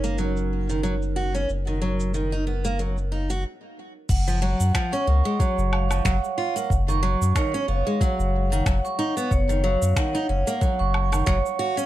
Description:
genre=folktronica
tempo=92 BPM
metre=4/4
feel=swing 56% on 16ths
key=F# major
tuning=A4 = 440 Hz
part: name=warbly tape-like pad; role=sustained chords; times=0.0-4.1 s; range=C#4 to A#4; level=-33 LUFS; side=right 5 dB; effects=chorus, built-in reverb, plate reverb
part: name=picked steel-string acoustic guitar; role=arpeggios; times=0.0-11.9 s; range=D#3 to F#4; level=-27 LUFS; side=equal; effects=tape echo, plate reverb
part: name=warm sub bass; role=bass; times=0.0-11.4 s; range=F#1 to F#2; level=-24 LUFS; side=equal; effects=none
part: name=organic electronic drum kit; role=drums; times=0.0-11.9 s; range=crash cymbal, finger snaps, shaker, woodblock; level=-32 LUFS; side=equal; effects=low-pass filter on perc, low-pass filter on cymbals, low-pass filter on snare, low-pass filter on room
part: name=vibraphone with hard mallets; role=second line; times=4.1-11.9 s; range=C#5 to C#6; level=-27 LUFS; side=moving between left 1 dB and right 8 dB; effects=auto-pan, ping-pong delay, plate reverb
part: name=electronic kick drum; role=drums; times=4.1-11.4 s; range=none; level=-23 LUFS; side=equal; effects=none
room=light reverb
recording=dark, warm production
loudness=-21 LUFS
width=side -14 dB against mid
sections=0.0-4.1 A section; 4.1-11.9 B section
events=filter sweep on steel-string acoustic guitar 0.0-4.1; break 3.4-4.1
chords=0.0 D#m7/F#; 1.5 Bmaj7/F# (rootless); 4.1 F#maj7; 6.7 C#9sus4/F#; 9.3 D#m7/F#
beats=0.18 0.83 | 1.49 2.14 2.79 3.44 | 4.09 4.75 5.40 6.05 | 6.70 7.36 8.01 8.66 | 9.31 9.96 10.62 11.27

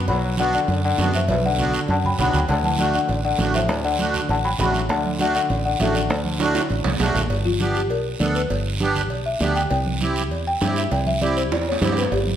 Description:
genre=latin, cumbia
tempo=199 BPM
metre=4/4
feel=straight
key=G major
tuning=A4 = 442 Hz
part: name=folk marimba with soft mallets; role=melody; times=0.0-12.4 s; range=F4 to B5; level=-24 LUFS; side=left 4 dB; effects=none
part: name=bright trombone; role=second line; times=0.0-7.0 s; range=A2 to F#3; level=-29 LUFS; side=left 2 dB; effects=none
part: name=fingered electric bass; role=bass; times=0.0-12.4 s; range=G1 to G2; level=-24 LUFS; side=equal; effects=none
part: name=congas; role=percussion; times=0.1-12.4 s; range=none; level=-29 LUFS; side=right 3 dB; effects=none
part: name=cowbell and timbales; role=percussion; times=0.1-12.3 s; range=none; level=-30 LUFS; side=right 3 dB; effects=none
part: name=guiro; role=percussion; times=0.1-12.4 s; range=none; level=-32 LUFS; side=right 5 dB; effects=none
part: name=accordion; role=accompaniment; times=0.4-12.0 s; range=A3 to A4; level=-26 LUFS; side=right 3 dB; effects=light tremolo tuning
room=wet large studio reverb, RT60 1.2 s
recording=none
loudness=-19 LUFS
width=side -10 dB against mid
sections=0.0-7.3 A section; 7.3-12.4 B section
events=drum fill 1.3-2.5, 6.4-7.3, 11.5-12.1; marimba solo 7.3-12.4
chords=0.0 Bm; 2.5 D; 7.3 G; 9.7 C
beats=| 0.08 0.38 0.68 0.98 | 1.28 1.58 1.89 2.19 | 2.49 2.79 3.09 3.39 | 3.69 3.99 4.29 4.59 | 4.90 5.20 5.50 5.80 | 6.10 6.40 6.70 7.00 | 7.30 7.61 7.91 8.21 | 8.51 8.81 9.11 9.41 | 9.71 10.01 10.31 10.61 | 10.91 11.22 11.52 11.82 | 12.12

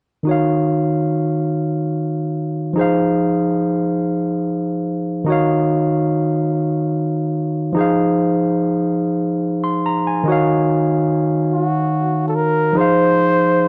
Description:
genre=R&B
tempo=48 BPM (dotted quarters)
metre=6/8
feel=straight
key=Eb dorian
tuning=A4 = 438 Hz
part: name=barky tine electric piano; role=accompaniment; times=0.2-13.7 s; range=Eb3 to C6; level=-19 LUFS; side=equal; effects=overdrive
part: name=warm flugelhorn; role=melody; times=11.5-13.7 s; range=Gb4 to C5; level=-19 LUFS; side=equal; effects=slapback echo
room=studio ambience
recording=dry, close 1970s-style studio recording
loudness=-18 LUFS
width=mono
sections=0.3-10.3 A section; 10.3-13.7 B section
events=none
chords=0.3 Ebm9; 2.8 Fm7; 5.3 Ebm9; 7.8 Fm7; 10.3 Ebm9; 12.8 Fm7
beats=| 0.26 1.51 | 2.76 4.01 | 5.26 6.51 | 7.76 9.01 | 10.26 11.51 | 12.76

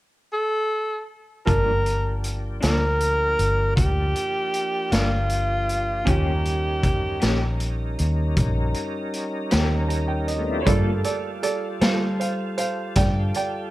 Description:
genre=slow blues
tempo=52 BPM (dotted quarters)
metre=12/8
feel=straight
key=G minor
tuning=A4 = 436 Hz
part: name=warm tenor saxophone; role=melody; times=0.3-7.6 s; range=F4 to Bb4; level=-24 LUFS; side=equal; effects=slapback echo
part: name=bright upright piano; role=accompaniment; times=1.5-13.7 s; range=A3 to Bb5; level=-28 LUFS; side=right 4 dB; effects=none
part: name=electric guitar through a small old amp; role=accompaniment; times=1.5-12.1 s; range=G2 to A4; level=-29 LUFS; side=left 2 dB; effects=tremolo
part: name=tonewheel organ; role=sustained chords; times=1.5-13.7 s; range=F3 to C5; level=-31 LUFS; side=left 1 dB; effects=chorus vibrato, slow rotary speaker
part: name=vintage muted fingered electric bass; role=bass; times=1.5-13.3 s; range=G1 to G3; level=-24 LUFS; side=equal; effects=none
part: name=raw garage drum kit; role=drums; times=1.5-13.5 s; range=hi-hat, kick drum, snare drum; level=-25 LUFS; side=equal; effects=none
room=light reverb, small room ambience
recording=none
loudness=-20 LUFS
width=side -16 dB against mid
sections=0.0-1.5 A section; 1.5-10.7 B section; 10.7-13.7 C section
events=upright piano fill 9.5-10.7; upright piano solo 10.7-13.7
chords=0.0 N.C.; 1.5 Gm7; 6.1 Eb7; 10.7 Gm9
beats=0.33 | 1.47 2.62 3.77 4.92 | 6.07 7.22 8.37 9.52 | 10.66 11.81 12.96

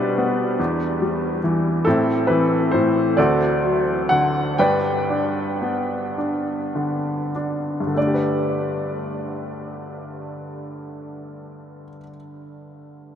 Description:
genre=classical, lyrical solo piano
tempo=31-48 BPM (dotted quarters)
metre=6/8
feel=rubato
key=G major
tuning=A4 = 440 Hz
part: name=bright upright piano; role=solo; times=0.0-13.2 s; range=D2 to G5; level=-20 LUFS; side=equal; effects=none
room=wet huge ambient reverb, RT60 8.0 s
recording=in a vast, echoing space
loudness=-19 LUFS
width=side -8 dB against mid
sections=0.0-8.0 A section; 8.0-11.7 B section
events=slowing down 1.9-8.0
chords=0.0 G/B; 0.6 Em; 1.9 Am; 3.2 D; 4.6 G; 8.0 Gadd9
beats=0.59 | 1.86 3.17 | 4.59 6.17 | 7.97 9.85

